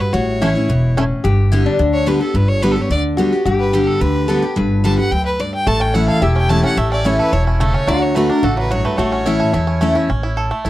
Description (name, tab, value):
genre	bluegrass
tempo	217 BPM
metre	4/4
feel	straight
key	unclear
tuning	A4 = 440 Hz
part	clear fiddle	melody	0.0-9.8 s	E4 to A5	-22 LUFS	equal	none
part	lap resonator guitar	second line	0.0-10.1 s	C#4 to B4	-22 LUFS	left 4 dB	none
part	picked steel-string acoustic guitar	accompaniment	0.0-10.7 s	E2 to A4	-18 LUFS	equal	none
part	upright bass	bass	0.1-10.7 s	E1 to E2	-19 LUFS	equal	none
part	bluegrass banjo	arpeggios	0.4-1.0, 5.7-10.7 s	F#3 to A4	-22 LUFS	right 3 dB	none
room	light reverb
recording	dry, close 1970s-style studio recording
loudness	-14 LUFS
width	side -15 dB against mid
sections	0.0-1.2 A section; 1.2-10.1 A section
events	none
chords	0.1 A; 1.2 G; 5.7 A; 7.9 D; 9.0 A